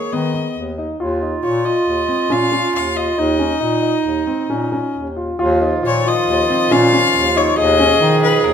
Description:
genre	contemporary instrumental, chamber music in an uneven meter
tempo	138 BPM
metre	5/4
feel	straight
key	unclear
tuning	A4 = 443 Hz
part	clear violin	melody	0.0-8.5 s	Bb4 to F5	-19 LUFS	left 6 dB	none
part	warm clarinet	second line	0.0-8.5 s	Eb4 to Ab4	-20 LUFS	right 5 dB	none
part	dark concert grand piano	arpeggios	0.0-8.5 s	Cb4 to F4	-21 LUFS	left 1 dB	none
part	warm bass clarinet	bass	0.1-8.5 s	Eb2 to Eb3	-21 LUFS	left 1 dB	none
part	pedal harmonium	sustained chords	5.4-8.5 s	Cb3 to Ab4	-25 LUFS	right 3 dB	none
room	wet recital hall reverb, RT60 1.5 s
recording	none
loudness	-14 LUFS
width	side -8 dB against mid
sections	0.0-5.4 A section; 5.4-8.5 A section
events	none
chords	0.0 Abm/Eb; 1.0 Ebsus2; 7.6 Abm/Eb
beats	0.13 0.57 | 1.00 1.44 1.87 2.31 2.74 | 3.18 3.62 4.05 4.50 4.95 | 5.39 5.83 6.27 6.71 7.14 | 7.58 8.01 8.44

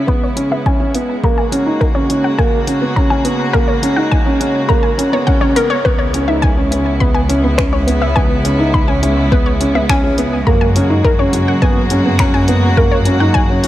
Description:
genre	piano and strings electronica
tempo	104 BPM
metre	4/4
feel	straight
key	C# dorian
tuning	A4 = 440 Hz
part	warm studio string section	sustained chords	0.0-13.7 s	C#3 to F#4	-21 LUFS	equal	sidechain pumping
part	wide unison pluck	arpeggios	0.1-13.4 s	A#4 to B5	-21 LUFS	left 3 dB	sidechain pumping, tape echo
part	felt-muted upright piano	riff	0.1-13.7 s	A#3 to D#4	-16 LUFS	right 1 dB	tape echo
part	electronic kick drum	drums	0.1-13.5 s	none	-16 LUFS	equal	none
part	deep house drum kit	drums	0.4-13.7 s	finger snaps, hi-hat	-24 LUFS	equal	none
part	rich symphonic double bass section	bass	5.9-13.7 s	C#2 to F#2	-17 LUFS	equal	sidechain pumping
room	light reverb, small room ambience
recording	dark, warm production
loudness	-11 LUFS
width	side -14 dB against mid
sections	0.0-5.9 A section; 5.9-13.7 B section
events	build-up 0.0-5.9; filter sweep on synth arpeggio sound 0.0-5.9; drop 5.9-13.7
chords	0.0 C#m7; 1.2 F#add9; 5.9 C#m7; 10.5 F#add9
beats	0.09 0.66 | 1.24 1.82 2.39 2.97 | 3.55 4.12 4.70 5.28 | 5.85 6.43 7.01 7.58 | 8.16 8.74 9.32 9.89 | 10.47 11.05 11.62 12.20 | 12.78 13.35

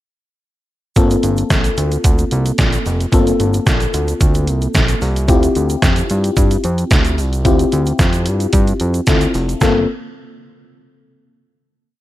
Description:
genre	early-eighties boogie funk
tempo	111 BPM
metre	4/4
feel	straight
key	G minor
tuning	A4 = 440 Hz
part	mellow FM electric piano	accompaniment	1.0-9.9 s	Bb3 to A4	-19 LUFS	left 3 dB	chorus
part	fat analog bass	bass	1.0-9.9 s	F1 to G2	-17 LUFS	equal	none
part	detuned 8-bit digital drum machine	drums	1.0-9.7 s	hi-hat, kick drum, snare drum	-15 LUFS	equal	gated reverb
part	egg shaker	percussion	1.0-9.9 s	none	-32 LUFS	right 7 dB	none
room	little or no reverb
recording	none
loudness	-13 LUFS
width	side -15 dB against mid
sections	1.0-9.6 verse; 9.6-11.8 final chord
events	none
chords	1.0 Gm11; 5.3 Dm11; 9.6 Gm11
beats	| 0.96 1.50 2.04 2.58 | 3.12 3.67 4.21 4.75 | 5.29 5.83 6.37 6.91 | 7.45 7.99 8.53 9.07 | 9.61

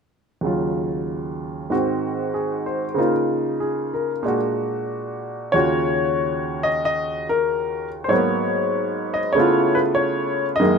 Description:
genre	solo jazz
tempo	95 BPM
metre	4/4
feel	swing 69% on 8ths, rubato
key	Eb minor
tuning	A4 = 440 Hz
part	clear grand piano	solo	0.4-10.8 s	Eb2 to Eb5	-19 LUFS	equal	none
room	light reverb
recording	minimal, uncompressed stereo recording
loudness	-20 LUFS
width	side -6 dB against mid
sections	0.4-5.5 A section; 5.5-10.8 B section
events	none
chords	0.4 Ebm9; 1.7 Ab7; 3.0 Db69; 4.2 Bb7b13; 5.5 Ebm9; 8.1 Abm9; 9.4 Db7alt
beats	| 0.43 1.08 1.71 2.35 | 2.98 3.61 4.24 4.88 | 5.53 6.19 6.84 7.48 | 8.11 8.74 9.36 9.98 | 10.60

